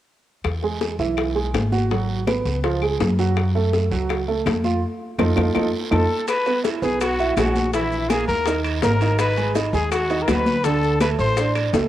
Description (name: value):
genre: Afro-Cuban jazz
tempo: 165 BPM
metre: 4/4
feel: straight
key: E major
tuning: A4 = 442 Hz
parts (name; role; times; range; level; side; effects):
- upright bass; bass; 0.4-11.9 s; G#1 to F#2; -24 LUFS; equal; none
- bongos; percussion; 0.4-11.9 s; none; -28 LUFS; left 8 dB; none
- claves; percussion; 0.4-11.7 s; none; -35 LUFS; left 9 dB; none
- congas; percussion; 0.4-11.9 s; none; -26 LUFS; left 2 dB; none
- guiro; percussion; 0.4-11.9 s; none; -37 LUFS; right 6 dB; none
- warm baby grand piano; accompaniment; 0.6-11.9 s; D3 to F#5; -24 LUFS; right 5 dB; cassette tape
- clear trumpet; melody; 5.9-11.5 s; E4 to C5; -23 LUFS; left 1 dB; none
- breathy jazz flute; second line; 5.9-11.5 s; E5 to C6; -31 LUFS; left 6 dB; cassette tape
- maracas; percussion; 6.3-11.9 s; none; -40 LUFS; left 8 dB; none
- timbales; percussion; 6.3-11.9 s; none; -32 LUFS; right 7 dB; none
room: light reverb, studio reverb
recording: home recording on cassette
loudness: -18 LUFS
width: side -12 dB against mid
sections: 0.4-6.3 A section; 6.3-11.9 B section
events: band accent 4.8-6.3; drum fill 5.7-6.3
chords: 0.4 Eadd9; 1.9 G#m7; 2.6 C#; 3.4 F#m; 4.8 F7; 6.3 Eadd9; 7.7 Emaj7#11/A#; 8.5 D#5; 9.2 G#m7; 10.6 D5